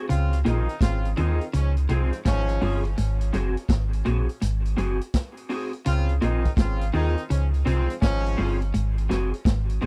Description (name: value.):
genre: roots reggae.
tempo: 83 BPM.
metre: 4/4.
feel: swing 65% on 16ths.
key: Db major.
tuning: A4 = 439 Hz.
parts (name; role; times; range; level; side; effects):
electric guitar through a small old amp; accompaniment; 0.0-9.9 s; C4 to Ab4; -33 LUFS; equal; ensemble chorus, dub echo.
warm horn section; second line; 0.1-8.6 s; Ab2 to F4; -34 LUFS; equal; dub echo.
clean electric guitar; riff; 0.1-9.9 s; Gb2 to Eb3; -30 LUFS; equal; subtle chorus.
warm sub bass; bass; 0.1-9.9 s; Gb1 to Eb2; -27 LUFS; equal; tube saturation.
vintage drum kit; drums; 0.1-9.9 s; hi-hat, kick drum, snare drum; -26 LUFS; equal; none.
room: little or no reverb.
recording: dry, close 1970s-style studio recording.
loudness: -24 LUFS.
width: mono.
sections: 0.1-9.9 A section.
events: none.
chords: 0.1 Dbmaj7; 3.0 Ab7; 5.9 Dbmaj7; 8.7 Ab7.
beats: | 0.09 0.81 1.54 2.26 | 2.98 3.70 4.42 5.14 | 5.86 6.58 7.30 8.02 | 8.74 9.46.